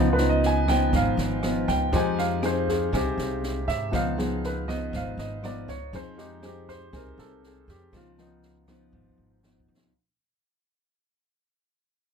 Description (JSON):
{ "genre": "bossa nova", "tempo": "120 BPM", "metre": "4/4", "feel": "straight", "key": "unclear", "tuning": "A4 = 442 Hz", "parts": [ { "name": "clear concert grand piano", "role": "accompaniment", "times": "0.0-9.9 s", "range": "F3 to Ab5", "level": "-28 LUFS", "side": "right 1 dB", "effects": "none" }, { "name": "nylon-string guitar", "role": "accompaniment", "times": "0.0-9.9 s", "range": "Ab2 to Ab4", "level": "-28 LUFS", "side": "left 2 dB", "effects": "none" }, { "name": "upright bass", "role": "bass", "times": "0.0-9.9 s", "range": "Ab1 to Ab2", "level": "-29 LUFS", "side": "right 1 dB", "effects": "none" }, { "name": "open jazz drum kit", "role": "drums", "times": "0.2-9.9 s", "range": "kick drum, rim click, snare drum", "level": "-34 LUFS", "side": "right 1 dB", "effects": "none" } ], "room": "light reverb", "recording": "none", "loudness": "-23 LUFS", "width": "side -6 dB against mid", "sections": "0.0-9.9 A section", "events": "fade-out 0.0-9.9; grand piano solo 0.0-9.9; drum fill 8.9-9.9", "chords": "0.0 Db9; 1.9 Fm7; 3.9 Db9; 5.9 Fm7; 7.9 Db9" }